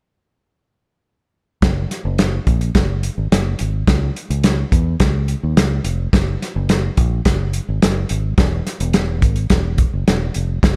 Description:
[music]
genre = uptempo 1960s-style soul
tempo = 107 BPM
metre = 4/4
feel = straight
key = F# mixolydian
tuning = A4 = 440 Hz
[part]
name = fingered electric bass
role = bass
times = 1.6-10.8 s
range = E1 to E2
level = -22 LUFS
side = equal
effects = none
[part]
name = warm soul drum kit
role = drums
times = 1.6-10.8 s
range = hi-hat, kick drum, snare drum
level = -19 LUFS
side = equal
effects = none
[sound]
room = light reverb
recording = none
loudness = -18 LUFS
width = mono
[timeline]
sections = 1.6-10.6 A section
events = none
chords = none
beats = | 1.63 2.19 2.75 3.32 | 3.88 4.44 5.00 5.57 | 6.13 6.69 7.26 7.82 | 8.38 8.94 9.51 10.07 | 10.63

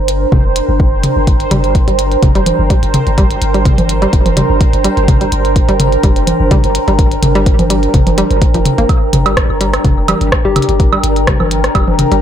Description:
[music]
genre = minimal techno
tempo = 126 BPM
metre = 4/4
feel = swing 54% on 16ths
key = G minor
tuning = A4 = 440 Hz
[part]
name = punchy sub bass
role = bass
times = 0.0-12.2 s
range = F1 to G1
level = -16 LUFS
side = equal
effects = sidechain pumping
[part]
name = bubbling stepped-filter texture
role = texture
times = 0.0-12.2 s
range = Bb4 to C5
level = -19 LUFS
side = right 5 dB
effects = chorus, built-in reverb, sidechain pumping
[part]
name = warbly tape-like pad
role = texture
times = 0.0-12.2 s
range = D4 to Bb5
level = -18 LUFS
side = equal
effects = chorus, built-in reverb, sidechain pumping
[part]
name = minimal click drum kit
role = drums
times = 0.1-12.2 s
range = hi-hat, rim click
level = -20 LUFS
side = equal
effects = none
[part]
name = electronic kick drum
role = drums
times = 0.3-11.9 s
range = none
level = -12 LUFS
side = equal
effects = none
[part]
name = electronic toms, congas and woodblock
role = percussion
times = 0.3-12.1 s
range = none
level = -16 LUFS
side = equal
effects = none
[part]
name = hollow square pluck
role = riff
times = 1.5-12.2 s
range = F3 to Bb3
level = -20 LUFS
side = equal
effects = chorus, sidechain pumping, dub echo
[part]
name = soft struck synth lead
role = melody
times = 10.4-10.9 s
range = G4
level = -18 LUFS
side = left 7 dB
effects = chorus, ping-pong delay
[sound]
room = light reverb, digital ambience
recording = none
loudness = -9 LUFS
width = side -9 dB against mid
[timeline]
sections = 0.0-8.9 A section; 8.9-12.2 B section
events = drop 8.9-12.2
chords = 0.0 Gm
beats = 0.32 0.80 | 1.27 1.75 2.23 2.70 | 3.18 3.65 4.13 4.61 | 5.08 5.56 6.04 6.51 | 6.99 7.46 7.94 8.42 | 8.89 9.37 9.85 10.32 | 10.80 11.27 11.75

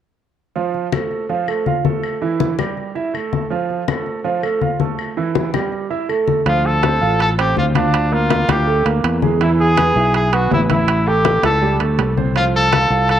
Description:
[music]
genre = latin, salsa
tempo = 163 BPM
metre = 4/4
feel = straight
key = D minor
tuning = A4 = 441 Hz
[part]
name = clear concert grand piano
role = accompaniment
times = 0.6-13.2 s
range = E3 to F5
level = -20 LUFS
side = right 6 dB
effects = cassette tape
[part]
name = congas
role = percussion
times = 0.6-13.2 s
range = none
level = -22 LUFS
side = left 8 dB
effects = none
[part]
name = claves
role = percussion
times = 0.9-6.3 s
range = none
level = -31 LUFS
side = left 9 dB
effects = none
[part]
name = clear trumpet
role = melody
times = 6.5-13.2 s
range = D4 to A4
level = -18 LUFS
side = left 1 dB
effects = cassette tape
[part]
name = fingered electric bass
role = bass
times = 6.5-13.2 s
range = A1 to E2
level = -18 LUFS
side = left 1 dB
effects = none
[part]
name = timbales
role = percussion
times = 6.5-13.2 s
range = none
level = -25 LUFS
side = right 9 dB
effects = none
[sound]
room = wet spring reverb, RT60 2.1 s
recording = home recording on cassette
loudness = -15 LUFS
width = side -10 dB against mid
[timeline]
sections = 0.6-6.5 A section; 6.5-13.2 B section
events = none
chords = 0.6 F; 2.0 A5; 3.5 F; 5.0 A5; 6.5 Dm7; 7.9 Bbmaj7/D; 9.4 E; 10.9 A7; 12.4 Csus4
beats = | 0.56 0.93 1.30 1.67 | 2.04 2.40 2.77 3.14 | 3.51 3.88 4.25 4.62 | 4.99 5.36 5.72 6.09 | 6.46 6.83 7.20 7.57 | 7.94 8.31 8.68 9.04 | 9.41 9.78 10.15 10.52 | 10.88 11.25 11.62 11.99 | 12.36 12.73 13.09

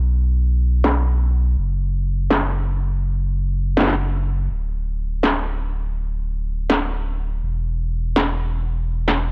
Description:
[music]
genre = half-time drum and bass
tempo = 164 BPM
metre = 4/4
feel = swing 56% on 16ths, half-time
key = B minor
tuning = A4 = 438 Hz
[part]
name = saturated sub bass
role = bass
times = 0.0-9.3 s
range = D1 to B1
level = -23 LUFS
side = equal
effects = tube saturation
[part]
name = electronic snare drum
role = drums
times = 0.8-9.2 s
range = none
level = -22 LUFS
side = equal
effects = overdrive, low-pass filter on hats, studio ambience, low-pass filter on snare, low-pass filter on perc
[sound]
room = little or no reverb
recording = none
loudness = -21 LUFS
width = mono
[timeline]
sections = 0.0-9.3 A section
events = none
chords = none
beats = | 0.11 0.48 0.84 1.21 | 1.58 1.94 2.31 2.67 | 3.04 3.40 3.77 4.14 | 4.50 4.87 5.24 5.60 | 5.97 6.33 6.70 7.06 | 7.43 7.80 8.16 8.53 | 8.89 9.26

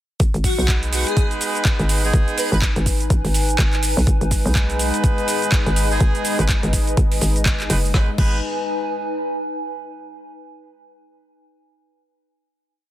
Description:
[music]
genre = bass house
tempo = 124 BPM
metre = 4/4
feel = swing 59% on 16ths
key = G# minor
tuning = A4 = 440 Hz
[part]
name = hollow knocking FM bass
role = bass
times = 0.2-8.4 s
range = F#1 to B1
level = -20 LUFS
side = equal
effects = sidechain pumping
[part]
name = electronic kick drum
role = drums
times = 0.2-8.3 s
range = none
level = -19 LUFS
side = equal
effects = overdrive
[part]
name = garage drum kit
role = drums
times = 0.2-8.3 s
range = crash cymbal, handclaps, hi-hat, shaker, snare drum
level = -24 LUFS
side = right 2 dB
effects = overdrive
[part]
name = warbly tape-like pad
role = texture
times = 0.2-9.8 s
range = D#4 to G#5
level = -27 LUFS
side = left 1 dB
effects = chorus, built-in reverb, sidechain pumping
[part]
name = airy dreamy lead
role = melody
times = 0.4-2.6 s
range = F#4 to B4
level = -27 LUFS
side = left 2 dB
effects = chorus, tape echo
[part]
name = brilliant horn section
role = stabs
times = 0.6-8.4 s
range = G#3 to B4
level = -27 LUFS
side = right 3 dB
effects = sidechain pumping, tape echo
[part]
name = dark analog pad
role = sustained chords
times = 4.1-8.2 s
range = G#3 to D#5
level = -29 LUFS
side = left 3 dB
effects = chorus, sidechain pumping
[sound]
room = digital ambience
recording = dense, heavily limited modern master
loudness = -17 LUFS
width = side -13 dB against mid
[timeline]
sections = 0.2-7.9 drop; 7.9-9.9 final chord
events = drop 0.2-7.9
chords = 0.2 G#m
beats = | 0.20 0.68 1.17 1.65 | 2.13 2.62 3.10 3.59 | 4.07 4.55 5.04 5.52 | 6.01 6.49 6.97 7.46 | 7.94 8.43 8.91 9.39

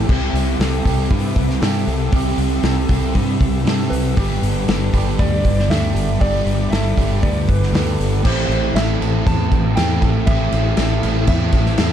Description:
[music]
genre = rock, shoegaze and dream pop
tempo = 118 BPM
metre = 4/4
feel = straight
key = A minor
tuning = A4 = 445 Hz
[part]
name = sweeping resonant pad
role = sustained chords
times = 0.0-11.9 s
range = G4 to E6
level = -33 LUFS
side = right 2 dB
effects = chorus
[part]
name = electric guitar through a small old amp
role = arpeggios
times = 0.0-11.9 s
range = G4 to B4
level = -30 LUFS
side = equal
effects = wide subtle chorus, tape echo
[part]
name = overdriven semi-hollow guitar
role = riff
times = 0.0-11.9 s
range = G2 to G4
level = -24 LUFS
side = right 14 dB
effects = reverse reverb
[part]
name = thick fuzz guitar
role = riff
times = 0.0-11.9 s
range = G2 to C4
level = -22 LUFS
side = left 8 dB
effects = distortion, ensemble chorus
[part]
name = fingered electric bass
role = bass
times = 0.0-11.9 s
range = G1 to G2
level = -20 LUFS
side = equal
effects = none
[part]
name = loose indie drum kit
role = drums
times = 0.1-11.9 s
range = crash cymbal, hi-hat, kick drum, snare drum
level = -21 LUFS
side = equal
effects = none
[part]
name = soft struck synth lead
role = melody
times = 3.9-11.9 s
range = B4 to A5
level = -26 LUFS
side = right 2 dB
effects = chorus, tremolo, tape echo
[sound]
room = studio ambience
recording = dark, warm production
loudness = -15 LUFS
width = side -10 dB against mid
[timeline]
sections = 0.0-8.2 A section; 8.2-11.9 B section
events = none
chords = 0.1 Cadd9; 4.2 G; 8.2 Am7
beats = | 0.09 0.60 1.10 1.61 | 2.12 2.63 3.14 3.65 | 4.16 4.67 5.18 5.69 | 6.20 6.71 7.22 7.73 | 8.24 8.75 9.26 9.76 | 10.27 10.78 11.28 11.79

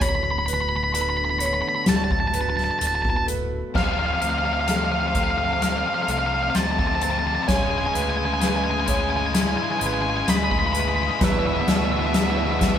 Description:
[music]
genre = post-rock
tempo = 64 BPM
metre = 4/4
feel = straight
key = unclear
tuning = A4 = 440 Hz
[part]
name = octave-fuzz lead guitar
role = melody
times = 0.0-12.8 s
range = E5 to B5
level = -24 LUFS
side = right 1 dB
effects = distortion
[part]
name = muted studio string section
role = sustained chords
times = 0.0-12.8 s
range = D3 to C5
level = -36 LUFS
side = right 1 dB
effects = none
[part]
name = felt-muted upright piano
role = arpeggios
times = 0.0-12.8 s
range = G#4 to C#5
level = -33 LUFS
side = right 4 dB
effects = none
[part]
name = twelve-string electric guitar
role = arpeggios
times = 0.0-12.8 s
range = D2 to F#4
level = -34 LUFS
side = left 2 dB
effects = none
[part]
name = picked electric bass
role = bass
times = 0.0-12.8 s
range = D1 to D2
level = -28 LUFS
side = equal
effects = none
[part]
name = soft-mallet drum kit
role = drums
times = 0.0-12.8 s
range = crash cymbal, hi-hat, kick drum, snare drum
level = -25 LUFS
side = left 1 dB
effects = none
[part]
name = distorted electric guitar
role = riff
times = 3.7-12.8 s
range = E2 to G#3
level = -27 LUFS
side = left 6 dB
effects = overdrive
[part]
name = crunchy overdriven guitar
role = riff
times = 11.2-12.8 s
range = E2 to B2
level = -27 LUFS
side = right 8 dB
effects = none
[sound]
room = moderate studio reverb, RT60 0.6 s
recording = band playing live in one room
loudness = -20 LUFS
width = side -9 dB against mid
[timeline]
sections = 0.0-3.8 A section; 3.8-12.8 B section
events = build-up 3.8-12.8; drum fill 3.8-12.8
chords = 0.0 D6; 3.8 F/D; 7.5 C#m7/D; 11.2 E7/D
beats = | 0.02 0.95 1.88 2.82 | 3.75 4.68 5.62 6.55 | 7.49 8.42 9.35 10.29 | 11.22 12.15

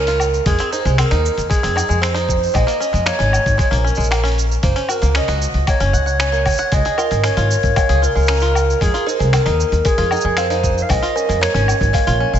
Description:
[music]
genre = folktronica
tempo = 115 BPM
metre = 4/4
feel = straight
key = Bb minor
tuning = A4 = 440 Hz
[part]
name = mellow clarinet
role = melody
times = 0.0-12.4 s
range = Ab4 to F5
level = -19 LUFS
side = right 2 dB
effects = diffuse ambient delay
[part]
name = bluegrass banjo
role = arpeggios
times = 0.0-12.4 s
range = Ab3 to Gb5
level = -24 LUFS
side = left 2 dB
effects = diffuse ambient delay
[part]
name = upright bass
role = bass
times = 0.0-12.4 s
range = Gb1 to F2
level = -18 LUFS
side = equal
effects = tube saturation
[part]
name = lo-fi sampler-style drum kit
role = drums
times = 0.1-12.4 s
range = cabasa, finger snaps, hi-hat, woodblock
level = -24 LUFS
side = left 1 dB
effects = none
[part]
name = electronic kick drum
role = drums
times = 0.5-12.0 s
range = none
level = -19 LUFS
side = equal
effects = none
[part]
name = music box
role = second line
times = 7.0-12.1 s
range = Bb4 to Bb5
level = -23 LUFS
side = right 1 dB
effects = ping-pong delay
[sound]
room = moderate lush hall reverb, RT60 2.4 s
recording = dreamy mix soaked in reverb, nothing above 7.9 kHz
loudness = -14 LUFS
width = side -9 dB against mid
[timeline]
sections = 0.0-12.4 A section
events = none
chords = 0.5 Fm7; 2.5 Bbm7; 4.6 Gb; 6.7 Db; 8.8 Fm7; 10.9 Bbm7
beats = | 0.46 0.98 1.50 2.03 | 2.55 3.07 3.59 4.11 | 4.63 5.16 5.68 6.20 | 6.72 7.24 7.76 8.29 | 8.81 9.33 9.85 10.37 | 10.89 11.42 11.94

